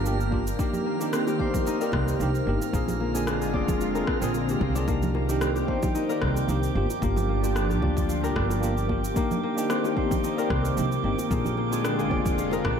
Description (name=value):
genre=sunset chillout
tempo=112 BPM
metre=4/4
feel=swing 54% on 16ths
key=C minor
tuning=A4 = 440 Hz
part: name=tine electric piano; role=accompaniment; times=0.0-12.8 s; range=Bb3 to D5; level=-30 LUFS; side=moving between left 4 dB and right 4 dB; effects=auto-pan, ping-pong delay
part: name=lush unison pad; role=sustained chords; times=0.0-12.8 s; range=D3 to G4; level=-31 LUFS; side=equal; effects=chorus, phaser
part: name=concert harp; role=arpeggios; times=0.0-12.8 s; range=Bb3 to D5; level=-32 LUFS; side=left 7 dB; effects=ping-pong delay
part: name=upright bass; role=bass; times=0.0-12.8 s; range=F1 to D2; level=-28 LUFS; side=equal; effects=none
part: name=drifting glass-harmonics texture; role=texture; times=0.0-12.8 s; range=G4 to Bb5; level=-36 LUFS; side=right 7 dB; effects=chorus, built-in reverb
part: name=electronic cabasa and rim click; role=drums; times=0.1-12.8 s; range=none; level=-35 LUFS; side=equal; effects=overdrive
part: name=electronic kick drum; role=drums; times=0.3-12.8 s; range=none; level=-30 LUFS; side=equal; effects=overdrive
part: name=congas and bongos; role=percussion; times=0.3-12.8 s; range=none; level=-36 LUFS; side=right 5 dB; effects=none
part: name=swell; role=sound effects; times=4.2-4.9 s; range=none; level=-36 LUFS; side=left 1 dB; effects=none
room=light reverb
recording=none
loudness=-23 LUFS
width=side -7 dB against mid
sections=0.0-12.8 A section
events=swell 4.2-4.9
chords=0.0 Gm7; 0.6 Cm7; 2.7 Bb7; 4.9 Cm7; 6.8 Gm7; 11.3 Bb7